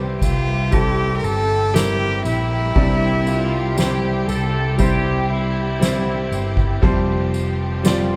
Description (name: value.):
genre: pop ballad.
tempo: 59 BPM.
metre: 4/4.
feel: straight.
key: unclear.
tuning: A4 = 438 Hz.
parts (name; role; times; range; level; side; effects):
clear concert grand piano; accompaniment; 0.0-8.2 s; C3 to E5; -25 LUFS; equal; none.
rich studio string section; sustained chords; 0.0-8.2 s; F3 to G4; -32 LUFS; equal; none.
mellow fretless electric bass; bass; 0.0-8.2 s; F1 to C2; -25 LUFS; equal; none.
warm cello; melody; 0.2-4.3 s; E4 to Bb4; -24 LUFS; equal; none.
soft-mallet drum kit; drums; 0.2-8.1 s; kick drum, ride cymbal, snare drum; -24 LUFS; equal; none.
tambourine; percussion; 0.2-8.1 s; none; -39 LUFS; equal; none.
muted French horn section; second line; 3.3-7.3 s; E4 to A4; -28 LUFS; equal; none.
room: moderate recital hall reverb, RT60 1.3 s.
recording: recorded in a church or concert hall.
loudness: -19 LUFS.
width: mono.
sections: 0.0-8.2 A section.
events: none.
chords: 0.0 C; 6.8 Fsus2.